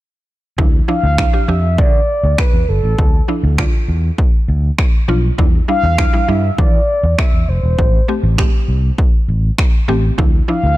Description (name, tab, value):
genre	dance-pop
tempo	100 BPM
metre	4/4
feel	straight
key	D dorian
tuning	A4 = 435 Hz
part	mallet-like synth pluck	accompaniment	0.6-10.7 s	D3 to G4	-20 LUFS	right 1 dB	chorus, sidechain pumping
part	fingered electric bass	bass	0.6-10.8 s	E1 to E3	-15 LUFS	equal	sidechain pumping
part	punchy analog drum machine	drums	0.6-10.3 s	finger snaps, kick drum	-14 LUFS	equal	none
part	mellow horn-like synth lead	melody	0.9-10.8 s	A4 to F5	-19 LUFS	equal	chorus, ping-pong delay
room	little or no reverb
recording	dark, warm production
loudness	-12 LUFS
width	side -16 dB against mid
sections	0.6-10.8 A section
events	none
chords	0.6 Dmadd9; 5.4 Em7; 7.8 Am7; 10.2 Dmadd9